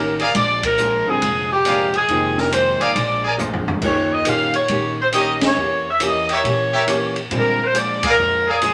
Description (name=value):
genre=jazz, big band swing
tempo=138 BPM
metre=4/4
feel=swing 65% on 8ths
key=unclear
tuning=A4 = 441 Hz
part: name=bright saxophone section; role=melody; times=0.0-8.7 s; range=G4 to F5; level=-20 LUFS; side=equal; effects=none
part: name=archtop guitar, miked and amplified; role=accompaniment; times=0.0-8.7 s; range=F2 to G4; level=-28 LUFS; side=equal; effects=none
part: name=upright bass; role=bass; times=0.0-8.7 s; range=F1 to Bb2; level=-32 LUFS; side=equal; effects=none
part: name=bright trumpet section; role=stabs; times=0.2-8.6 s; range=G4 to Ab5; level=-23 LUFS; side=equal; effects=none
part: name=open jazz drum kit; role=drums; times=0.2-8.7 s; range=crash cymbal, hi-hat, kick drum, ride cymbal, rim click, snare drum, toms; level=-27 LUFS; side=equal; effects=none
part: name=warm baby grand piano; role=accompaniment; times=1.1-7.6 s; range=D3 to G4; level=-28 LUFS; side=equal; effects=none
room=wet studio ambience, RT60 0.5 s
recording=none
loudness=-18 LUFS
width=mono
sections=0.0-8.7 A section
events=band accent 0.6, 5.4, 8.0; drum fill 3.4-3.8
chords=0.3 Bb7; 2.1 Fm7; 3.0 Bb7; 3.8 Eb7; 5.6 Edim7; 7.3 Bb7